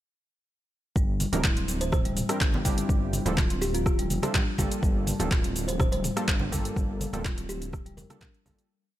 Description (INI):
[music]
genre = afro house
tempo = 124 BPM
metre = 4/4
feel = straight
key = G dorian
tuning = A4 = 440 Hz
[part]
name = marimba with soft mallets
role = arpeggios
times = 1.0-8.6 s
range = E3 to F4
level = -34 LUFS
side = left 2 dB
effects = sidechain pumping, tape echo
[part]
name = dark detuned saw bass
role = bass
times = 1.0-8.5 s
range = D1 to G1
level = -32 LUFS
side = equal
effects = sidechain pumping
[part]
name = deep house drum kit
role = drums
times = 1.0-8.7 s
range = cabasa, handclaps, hi-hat, rim click, toms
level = -31 LUFS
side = equal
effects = none
[part]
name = electronic kick drum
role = drums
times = 1.0-8.6 s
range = none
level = -26 LUFS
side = equal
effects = none
[part]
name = congas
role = percussion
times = 1.2-8.6 s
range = none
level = -33 LUFS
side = right 2 dB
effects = none
[part]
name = warm analog keys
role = stabs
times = 1.3-8.7 s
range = Bb3 to Bb4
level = -35 LUFS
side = right 3 dB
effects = chorus, sidechain pumping, tape echo
[part]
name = kalimba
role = melody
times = 1.8-8.2 s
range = F4 to C5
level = -35 LUFS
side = right 1 dB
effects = tape echo
[sound]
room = little or no reverb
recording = none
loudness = -24 LUFS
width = side -14 dB against mid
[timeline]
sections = 1.0-8.7 drop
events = drop 1.0-8.7; fade-out 6.1-8.7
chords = 1.0 C; 2.9 Dm7; 4.8 Gm7